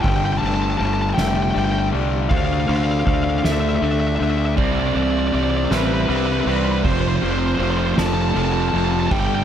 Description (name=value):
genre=post-rock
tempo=53 BPM (dotted quarters)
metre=6/8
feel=straight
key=unclear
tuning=A4 = 440 Hz
part: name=fuzz lead guitar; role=melody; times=0.0-9.4 s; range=B4 to A5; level=-24 LUFS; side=equal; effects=distortion, slapback echo
part: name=shimmering ambient pad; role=sustained chords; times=0.0-9.4 s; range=G3 to D5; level=-36 LUFS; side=right 2 dB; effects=none
part: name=twelve-string electric guitar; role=arpeggios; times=0.0-9.4 s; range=C3 to D4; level=-30 LUFS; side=equal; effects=none
part: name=crunchy overdriven guitar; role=riff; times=0.0-9.4 s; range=F2 to D4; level=-23 LUFS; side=left 6 dB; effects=none
part: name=fuzz fingered electric bass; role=bass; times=0.0-9.4 s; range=F1 to D2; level=-23 LUFS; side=right 1 dB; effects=overdrive
part: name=soft-mallet drum kit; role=drums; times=0.0-9.3 s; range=crash cymbal, kick drum, ride cymbal, snare drum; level=-25 LUFS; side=equal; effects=none
part: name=vibraphone with medium mallets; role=arpeggios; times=1.2-8.7 s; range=A4 to E5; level=-32 LUFS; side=right 10 dB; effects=slapback echo
part: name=overdriven electric guitar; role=riff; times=4.6-9.4 s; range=F2 to C4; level=-25 LUFS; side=right 16 dB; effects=none
room=light reverb, studio reverb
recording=none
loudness=-17 LUFS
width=side -9 dB against mid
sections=0.0-9.4 A section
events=none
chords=0.0 Gsus2; 2.3 Dm; 4.6 Cadd9; 6.8 F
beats=| 0.04 1.17 | 2.31 3.44 | 4.58 5.71 | 6.84 7.98 | 9.11